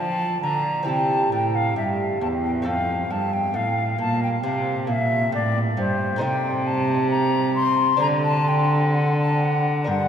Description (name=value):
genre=classical, baroque-style sonata movement with continuo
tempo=67 BPM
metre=4/4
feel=rubato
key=unclear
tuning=A4 = 441 Hz
part: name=bright baroque flute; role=melody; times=0.0-10.1 s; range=C5 to C6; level=-23 LUFS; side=left 2 dB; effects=none
part: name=lute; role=accompaniment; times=0.0-10.1 s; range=E2 to C5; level=-27 LUFS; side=right 2 dB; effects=none
part: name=dark cello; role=bass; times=0.0-10.1 s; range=E2 to F3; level=-23 LUFS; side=right 1 dB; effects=none
room=wet cathedral reverb, RT60 6.1 s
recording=none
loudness=-19 LUFS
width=side -8 dB against mid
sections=0.0-10.1 A section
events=none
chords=0.0 Dm; 0.9 C; 2.7 F; 6.2 Adim/C; 8.0 D7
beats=0.88 1.78 | 2.67 3.56 4.45 5.34 | 6.22 7.10 8.00 8.93 | 9.88